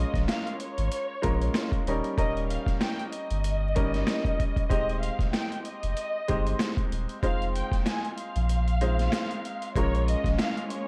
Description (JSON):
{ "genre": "hip hop, boom-bap hip-hop", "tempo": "95 BPM", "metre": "4/4", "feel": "swing 56% on 16ths", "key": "unclear", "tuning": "A4 = 440 Hz", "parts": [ { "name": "warm studio violin section", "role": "melody", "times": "0.0-10.9 s", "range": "Db5 to Ab5", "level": "-36 LUFS", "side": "equal", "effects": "high-pass filter, low-pass filter, tape echo" }, { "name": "clear grand piano", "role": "accompaniment", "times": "0.0-10.9 s", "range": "G3 to C5", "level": "-35 LUFS", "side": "equal", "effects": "cassette tape, high-pass filter, low-pass filter" }, { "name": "warm sub bass", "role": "bass", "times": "0.0-10.4 s", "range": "Eb1 to Bb1", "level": "-30 LUFS", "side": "equal", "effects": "none" }, { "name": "boom bap sampler-style drum kit", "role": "drums", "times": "0.1-10.9 s", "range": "hi-hat, kick drum, snare drum", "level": "-32 LUFS", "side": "equal", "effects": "none" }, { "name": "rich studio string section", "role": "sustained chords", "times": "9.7-10.9 s", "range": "Ab3 to Db4", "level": "-40 LUFS", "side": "equal", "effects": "none" } ], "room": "small room ambience", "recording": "dry, gritty hardware recording, vinyl crackle", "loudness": "-28 LUFS", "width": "mono", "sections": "0.0-9.8 A section; 9.8-10.9 B section", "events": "kick muted 8.5-9.8", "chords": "0.0 Bbm7; 1.9 Eb7; 4.7 Abmaj7/Eb; 7.2 Fm7; 9.8 Bbm7", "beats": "0.28 0.92 1.55 | 2.18 2.81 3.44 4.07 | 4.71 5.34 5.97 6.60 | 7.23 7.86 8.49 9.13 | 9.76 10.39" }